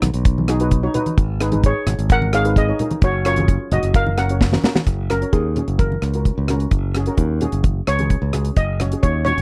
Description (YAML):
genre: calypso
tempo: 130 BPM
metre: 4/4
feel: straight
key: F# major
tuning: A4 = 440 Hz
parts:
  - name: steel pan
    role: accompaniment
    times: 0.0-9.4 s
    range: F#3 to C#5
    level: -28 LUFS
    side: equal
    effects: none
  - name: modern bright fingered electric bass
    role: bass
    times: 0.0-9.4 s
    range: F#1 to D#2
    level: -23 LUFS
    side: equal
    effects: none
  - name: deep reggae drum kit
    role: drums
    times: 0.0-9.4 s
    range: hi-hat, kick drum, rim click, snare drum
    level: -20 LUFS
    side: equal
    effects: none
  - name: congas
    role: percussion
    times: 0.0-9.4 s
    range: none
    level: -28 LUFS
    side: equal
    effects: none
  - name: steel pan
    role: melody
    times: 1.7-9.4 s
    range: E#4 to F#5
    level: -24 LUFS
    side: equal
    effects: none
room: little or no reverb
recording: dry, close 1970s-style studio recording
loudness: -19 LUFS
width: mono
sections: 0.0-4.9 A section; 4.9-9.4 B section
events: drum fill 4.4-4.9; steel pan solo 4.9-9.4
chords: 0.0 B; 1.2 G#m; 3.0 F#